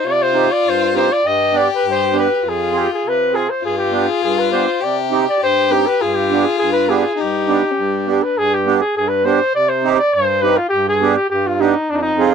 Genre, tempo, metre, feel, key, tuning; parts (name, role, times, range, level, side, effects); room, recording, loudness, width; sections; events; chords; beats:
klezmer; 101 BPM; 2/4; straight; G phrygian dominant; A4 = 440 Hz
warm cornet; melody; 0.0-12.3 s; D4 to Eb5; -16 LUFS; left 1 dB
rich violin; second line; 0.0-8.4 s; C#4 to G4; -21 LUFS; left 12 dB
accordion; accompaniment; 0.0-12.3 s; F2 to Ab4; -19 LUFS; right 9 dB; light tremolo tuning
light reverb; dry, close 1970s-style studio recording; -14 LUFS; side -7 dB against mid
0.0-8.4 A section; 8.4-12.3 A section
0.0 Cm; 1.2 G; 2.4 Fm; 3.6 G; 4.8 Cm; 6.0 G; 9.5 Cm; 10.7 G
| 0.04 0.64 | 1.24 1.83 | 2.43 3.02 | 3.62 4.21 | 4.81 5.40 | 6.00 6.59 | 7.18 7.77 | 8.36 8.95 | 9.54 10.13 | 10.71 11.30 | 11.89